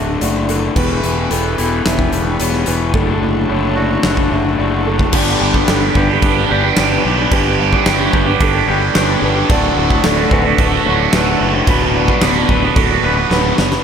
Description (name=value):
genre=post-rock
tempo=110 BPM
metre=4/4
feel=straight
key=unclear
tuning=A4 = 440 Hz
part: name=hand-pumped harmonium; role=sustained chords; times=0.0-13.8 s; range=F#4 to B5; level=-25 LUFS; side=right 4 dB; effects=none
part: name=felt-muted upright piano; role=arpeggios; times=0.0-13.8 s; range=A4 to E5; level=-24 LUFS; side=right 6 dB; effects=digital delay, slapback echo
part: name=twangy electric guitar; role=arpeggios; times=0.0-13.8 s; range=D2 to B4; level=-23 LUFS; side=left 1 dB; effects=digital delay, slapback echo
part: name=raw garage guitar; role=riff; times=0.0-13.8 s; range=D2 to B4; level=-19 LUFS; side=left 8 dB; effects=overdrive, slapback echo
part: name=fuzz fingered electric bass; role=bass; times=0.0-13.8 s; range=D1 to B1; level=-20 LUFS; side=equal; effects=overdrive
part: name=huge arena drum kit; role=drums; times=0.2-13.8 s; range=crash cymbal, hi-hat, kick drum, snare drum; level=-18 LUFS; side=equal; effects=none
part: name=overdriven electric guitar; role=riff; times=5.1-13.8 s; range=D2 to B4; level=-17 LUFS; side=right 12 dB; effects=phaser, slapback echo
room=moderate lush hall reverb, RT60 2.6 s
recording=big arena sound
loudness=-12 LUFS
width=side -7 dB against mid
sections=0.0-5.1 A section; 5.1-13.8 B section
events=build-up 0.0-5.1; drum fill 13.3-13.8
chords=0.0 D; 0.8 Em; 3.0 D/F#; 5.1 G; 9.5 D; 11.7 Bm7/D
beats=0.22 | 0.77 1.31 1.86 2.40 | 2.95 3.50 4.04 4.59 | 5.14 5.68 6.23 6.77 | 7.32 7.87 8.41 8.96 | 9.50 10.04 10.59 11.13 | 11.68 12.22 12.77 13.31